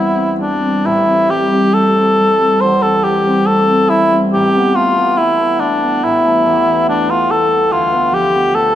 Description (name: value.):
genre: classical, impressionist duo for cor anglais and harp.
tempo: 63-73 BPM.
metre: 4/4.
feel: rubato.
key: A minor.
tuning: A4 = 440 Hz.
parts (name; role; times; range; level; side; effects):
mellow cor anglais; melody; 0.0-8.8 s; D4 to C5; -12 LUFS; left 1 dB; none.
concert harp; accompaniment; 0.0-8.8 s; A1 to D4; -16 LUFS; right 1 dB; none.
room: wet recital hall reverb, RT60 1.6 s.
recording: none.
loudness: -11 LUFS.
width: side -11 dB against mid.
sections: 0.9-8.8 A section.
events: none.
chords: 0.0 Am11; 0.9 Am7; 4.3 Esus4/A; 7.7 Dm6.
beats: | 0.85 1.75 2.62 3.47 | 4.33 5.18 6.04 6.89 | 7.72 8.55.